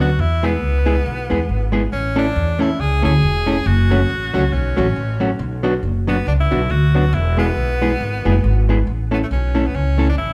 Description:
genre	ska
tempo	138 BPM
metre	4/4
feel	swing 58% on 8ths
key	A major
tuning	A4 = 440 Hz
part	edgy tenor saxophone	melody	0.0-10.3 s	A3 to G#4	-26 LUFS	equal	dub echo
part	hollow-body jazz guitar	accompaniment	0.0-10.1 s	F#3 to A4	-23 LUFS	equal	none
part	upright bass	bass	0.0-10.3 s	E1 to E2	-20 LUFS	equal	none
room	moderate large studio reverb, RT60 1.1 s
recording	band playing live in one room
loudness	-18 LUFS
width	mono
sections	0.0-8.9 A section; 8.9-10.3 B section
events	none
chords	0.2 E; 1.9 A; 3.7 F#m; 5.4 Bm; 7.1 E; 8.9 A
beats	| 0.18 0.61 1.05 1.48 | 1.92 2.35 2.79 3.22 | 3.65 4.09 4.52 4.96 | 5.39 5.83 6.26 6.70 | 7.13 7.57 8.00 8.44 | 8.87 9.30 9.74 10.17

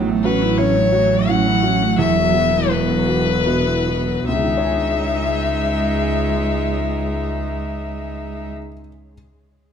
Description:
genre	neoclassical piano and strings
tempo	72-91 BPM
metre	3/4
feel	rubato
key	C# minor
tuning	A4 = 440 Hz
part	dark cello	second line	0.0-8.5 s	F#3 to G#3	-24 LUFS	right 8 dB	none
part	dark baby grand piano	accompaniment	0.0-9.1 s	C#2 to G#5	-25 LUFS	right 2 dB	none
part	warm viola	accompaniment	0.0-8.5 s	E3 to E4	-26 LUFS	right 3 dB	none
part	glassy FM pad	sustained chords	0.0-8.5 s	G#3 to E5	-30 LUFS	left 2 dB	ensemble chorus, built-in reverb
part	rich double bass	bass	0.0-8.5 s	E1 to C#2	-24 LUFS	equal	none
part	dark violin	melody	0.2-8.5 s	B4 to F#5	-20 LUFS	left 6 dB	none
room	moderate recital hall reverb, RT60 1.3 s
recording	none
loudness	-16 LUFS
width	side -7 dB against mid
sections	0.0-4.3 A section; 4.3-9.1 B section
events	slowing down 0.0-4.3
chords	0.0 A6; 2.0 Esus2; 4.3 C#madd9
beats	0.59 1.30 | 1.99 2.71 3.47 | 4.29 5.08 5.89 | 6.69 7.50 8.30

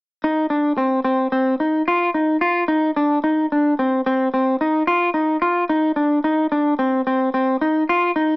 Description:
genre	progressive instrumental, progressive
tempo	220 BPM (eighths)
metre	11/8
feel	straight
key	C minor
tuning	A4 = 441 Hz
part	clean electric guitar	solo	0.2-8.4 s	C4 to F4	-16 LUFS	equal	cassette tape
room	light reverb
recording	home recording on cassette, AM radio sound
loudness	-16 LUFS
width	side -32 dB against mid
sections	0.2-8.4 A section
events	none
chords	none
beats	| 0.24 0.51 0.79 1.06 1.33 1.60 1.88 2.15 2.42 2.70 2.97 | 3.24 3.52 3.79 4.06 4.33 4.61 4.88 5.16 5.43 5.70 5.98 | 6.25 6.52 6.80 7.07 7.34 7.62 7.89 8.17

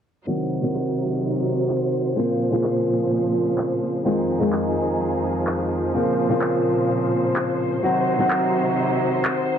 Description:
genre	EDM, festival progressive house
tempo	127 BPM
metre	4/4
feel	straight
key	Bb minor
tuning	A4 = 441 Hz
part	fingerpicked steel-string acoustic guitar	accompaniment	0.3-9.6 s	Db3 to Gb4	-21 LUFS	equal	dub echo
part	clear symphonic string section	sustained chords	0.3-9.6 s	F2 to C5	-24 LUFS	right 1 dB	low-pass filter
part	electronic handclaps	drums	0.7-9.3 s	none	-28 LUFS	equal	overdrive, low-pass filter on snare
room	moderate digital room reverb, RT60 1.2 s, small room ambience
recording	low-pass filter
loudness	-19 LUFS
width	side -8 dB against mid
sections	0.3-9.6 A section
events	filter sweep on drum 0.3-9.6; filter sweep on string section 0.3-9.6; filter sweep 0.3-9.6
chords	0.3 Cdim; 2.2 Bbmadd9; 4.1 Fm7; 5.9 Bbmadd9; 7.8 Cdim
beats	| 0.27 0.75 1.22 1.69 | 2.16 2.64 3.11 3.58 | 4.05 4.53 5.00 5.47 | 5.94 6.42 6.89 7.36 | 7.83 8.31 8.78 9.25

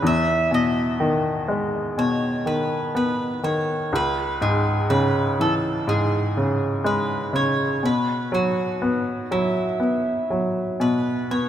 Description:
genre	pop ballad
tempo	61 BPM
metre	4/4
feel	straight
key	E major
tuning	A4 = 437 Hz
part	mandolin	melody	0.0-11.5 s	E4 to E5	-26 LUFS	right 2 dB	none
part	bright upright piano	accompaniment	0.0-11.5 s	C#2 to B3	-21 LUFS	equal	none
room	moderate lush hall reverb, RT60 2.6 s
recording	rough home demo mix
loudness	-20 LUFS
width	side -10 dB against mid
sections	0.0-11.5 A section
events	none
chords	0.0 Emaj7; 3.9 C#m; 7.8 Bsus4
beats	| 0.03 1.00 1.98 2.95 | 3.92 4.90 5.88 6.85 | 7.83 8.82 9.80 10.80

